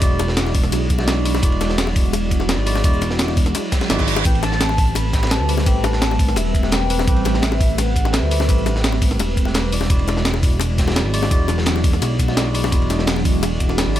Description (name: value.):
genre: liquid drum and bass.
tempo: 170 BPM.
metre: 4/4.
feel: straight.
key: A dorian.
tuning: A4 = 435 Hz.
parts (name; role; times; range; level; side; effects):
tine electric piano; accompaniment; 0.0-14.0 s; G#3 to E5; -25 LUFS; equal; phaser, ping-pong delay.
ethereal airy pad; sustained chords; 0.0-14.0 s; F#3 to B4; -27 LUFS; right 1 dB; ensemble chorus, built-in reverb, phaser, sidechain pumping.
smooth synth bass; bass; 0.0-14.0 s; E1 to D2; -21 LUFS; equal; none.
breakbeat sampler-style drum kit; drums; 0.0-14.0 s; hi-hat, shaker, snare drum; -24 LUFS; equal; none.
crunchy breakbeat drum kit; drums; 0.0-14.0 s; ride cymbal, snare drum; -29 LUFS; equal; high-pass filter on cymbals, high-pass filter on snare, high-pass filter on room.
electronic kick drum; drums; 0.0-13.7 s; none; -18 LUFS; equal; none.
bongos; percussion; 0.2-13.8 s; none; -27 LUFS; left 8 dB; none.
reverse cymbal; sound effects; 3.7-4.3 s; none; -29 LUFS; right 6 dB; none.
warm velvety synth lead; melody; 4.3-9.2 s; E5 to B5; -27 LUFS; left 1 dB; chorus, digital delay.
room: little or no reverb.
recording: none.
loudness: -16 LUFS.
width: side -12 dB against mid.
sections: 0.0-14.0 A section.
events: reverse cymbal 3.7-4.3.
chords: 0.0 E9; 4.3 Am9; 9.7 E9.